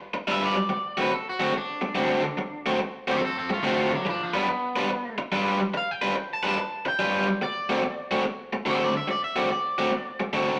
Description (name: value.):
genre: blues.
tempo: 143 BPM.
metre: 4/4.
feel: swing 67% on 8ths.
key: D mixolydian.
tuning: A4 = 440 Hz.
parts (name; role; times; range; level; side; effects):
raw garage guitar; riff; 0.1-10.6 s; D3 to B4; -28 LUFS; equal; overdrive.
electric guitar at the edge of break-up; melody; 0.3-10.3 s; F3 to A5; -32 LUFS; equal; none.
room: wet stone room reverb, RT60 1.0 s.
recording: rough rehearsal-room recording, warm saturation, nothing above 10.6 kHz.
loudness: -26 LUFS.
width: mono.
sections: 0.0-10.6 A section.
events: clean electric guitar solo 0.0-10.6.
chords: 0.0 G7; 0.7 D7; 4.1 G7; 7.4 D7.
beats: 0.28 | 0.70 1.12 1.54 1.96 | 2.38 2.80 3.22 3.64 | 4.06 4.48 4.90 5.32 | 5.74 6.15 6.57 6.99 | 7.41 7.83 8.24 8.66 | 9.08 9.50 9.92 10.33.